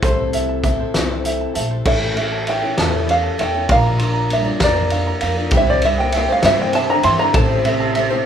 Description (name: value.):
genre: indie folk with a building arrangement.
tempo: 66 BPM (dotted quarters).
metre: 6/8.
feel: straight.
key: unclear.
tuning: A4 = 442 Hz.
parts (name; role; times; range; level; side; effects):
open-back banjo; melody; 0.0-8.3 s; C5 to C6; -18 LUFS; right 1 dB; none.
clear upright piano; accompaniment; 0.0-8.3 s; A1 to A5; -32 LUFS; right 2 dB; none.
picked twelve-string acoustic guitar; accompaniment; 0.0-8.3 s; A2 to C5; -23 LUFS; left 4 dB; none.
ukulele; arpeggios; 0.0-8.3 s; F4 to Bb5; -25 LUFS; right 4 dB; none.
upright bass; bass; 0.0-8.1 s; A1 to G2; -23 LUFS; equal; none.
loose indie drum kit; drums; 0.0-8.1 s; crash cymbal, hi-hat, kick drum, ride cymbal, snare drum; -21 LUFS; equal; none.
warm cello; second line; 4.3-8.3 s; F2 to E3; -26 LUFS; right 5 dB; none.
room: moderate large studio reverb, RT60 0.8 s.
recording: band playing live in one room.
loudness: -15 LUFS.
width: side -8 dB against mid.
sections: 0.0-1.9 A section; 1.9-8.3 B section.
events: upright piano fill 0.9-1.9.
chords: 0.0 Am/C; 1.9 A; 3.7 Bb; 5.5 C; 7.4 Am.